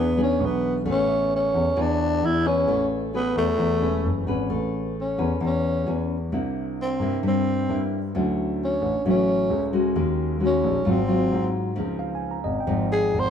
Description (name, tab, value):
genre	bossa nova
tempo	132 BPM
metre	4/4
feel	straight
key	A major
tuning	A4 = 441 Hz
part	growling tenor saxophone	melody	0.0-13.3 s	A3 to B#4	-24 LUFS	equal	none
part	nylon-string guitar	accompaniment	0.0-13.3 s	G#2 to B4	-26 LUFS	left 1 dB	none
part	tine electric piano	accompaniment	0.0-4.5, 12.0-13.3 s	D#5 to C#6	-35 LUFS	right 3 dB	none
part	dark grand piano	bass	0.0-13.3 s	E1 to G#2	-27 LUFS	left 1 dB	none
room	light reverb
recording	minimal, uncompressed stereo recording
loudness	-21 LUFS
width	side -8 dB against mid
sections	0.0-4.5 A section; 4.5-13.3 B section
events	tenor saxophone solo 4.5-13.3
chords	0.0 E7; 0.9 Amaj9; 6.3 C9; 8.1 Dmaj9; 10.0 D#m7; 10.9 G#6; 11.8 C#maj9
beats	0.40 | 0.86 1.31 1.77 2.22 | 2.68 3.13 3.59 4.04 | 4.50 4.95 5.41 5.86 | 6.32 6.77 7.23 7.68 | 8.14 8.59 9.05 9.50 | 9.96 10.41 10.87 11.32 | 11.78 12.23 12.68 13.14